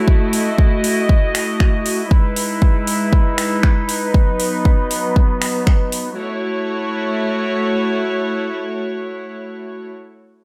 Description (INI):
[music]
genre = nu-disco, nu disco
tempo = 118 BPM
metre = 4/4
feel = straight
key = F# dorian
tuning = A4 = 439 Hz
[part]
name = rich chamber string section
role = sustained chords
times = 0.0-9.9 s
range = F#3 to D#5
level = -22 LUFS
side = equal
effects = sidechain pumping, low-pass filter
[part]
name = electronic kick drum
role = drums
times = 0.1-5.8 s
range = none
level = -16 LUFS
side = equal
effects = overdrive
[part]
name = pop drum kit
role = drums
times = 0.3-6.0 s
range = finger snaps, hi-hat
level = -26 LUFS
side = equal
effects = overdrive
[sound]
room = moderate plate reverb, RT60 1.2 s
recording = dreamy mix soaked in reverb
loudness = -18 LUFS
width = mono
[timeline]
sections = 0.0-6.2 A section; 6.2-10.2 B section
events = filter sweep on string section 0.0-6.2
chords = 0.0 F#m7; 2.1 Emaj7; 4.1 B; 6.2 F#m7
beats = | 0.07 0.58 1.09 1.60 | 2.11 2.62 3.12 3.63 | 4.14 4.65 5.16 5.67 | 6.18 6.68 7.19 7.70 | 8.21 8.72 9.23 9.73